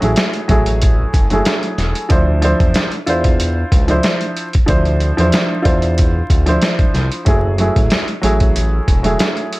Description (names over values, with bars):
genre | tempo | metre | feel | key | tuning
hip hop, boom-bap hip-hop | 93 BPM | 4/4 | swing 55% on 16ths | F# minor | A4 = 440 Hz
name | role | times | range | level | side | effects
warm upright piano | accompaniment | 0.0-9.6 s | F3 to C5 | -17 LUFS | equal | cassette tape, high-pass filter, low-pass filter, plate reverb
smooth synth bass | bass | 0.0-9.2 s | E1 to E2 | -17 LUFS | equal | none
trip hop sampler-style drum kit | drums | 0.0-9.6 s | hi-hat, kick drum, snare drum | -16 LUFS | equal | none
room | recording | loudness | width
little or no reverb | vinyl crackle | -12 LUFS | side -20 dB against mid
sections
0.0-9.6 A section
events
none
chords
0.0 F#m9; 2.1 Dm9; 7.3 F#m9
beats
0.17 0.81 1.46 | 2.10 2.75 3.39 4.04 | 4.68 5.33 5.97 6.62 | 7.26 7.91 8.55 9.20